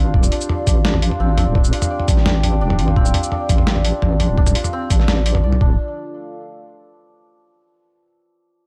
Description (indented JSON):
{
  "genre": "half-time drum and bass",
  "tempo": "170 BPM",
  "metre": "4/4",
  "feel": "half-time",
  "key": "D minor",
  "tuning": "A4 = 440 Hz",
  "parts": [
    { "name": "dark analog pad", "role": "sustained chords", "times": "0.0-7.2 s", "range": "D4 to G5", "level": "-31 LUFS", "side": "equal", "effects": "chorus, sidechain pumping" },
    { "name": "santur", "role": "arpeggios", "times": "0.0-5.8 s", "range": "C4 to D5", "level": "-28 LUFS", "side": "equal", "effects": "tape echo" },
    { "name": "deep soft wobble bass", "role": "bass", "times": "0.0-5.8 s", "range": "D1 to C2", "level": "-20 LUFS", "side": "equal", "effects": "chorus" },
    { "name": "electronic kick drum", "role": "drums", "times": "0.1-5.7 s", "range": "none", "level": "-19 LUFS", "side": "equal", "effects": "none" },
    { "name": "boom bap sampler-style drum kit", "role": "drums", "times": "0.2-5.6 s", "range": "hi-hat, shaker, snare drum, toms", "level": "-24 LUFS", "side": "equal", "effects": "none" }
  ],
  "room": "little or no reverb",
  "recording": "dark, warm production",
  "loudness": "-17 LUFS",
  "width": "mono",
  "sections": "0.0-5.8 A section; 5.8-7.2 B section",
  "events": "drop 0.0-5.8",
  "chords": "0.0 Dm"
}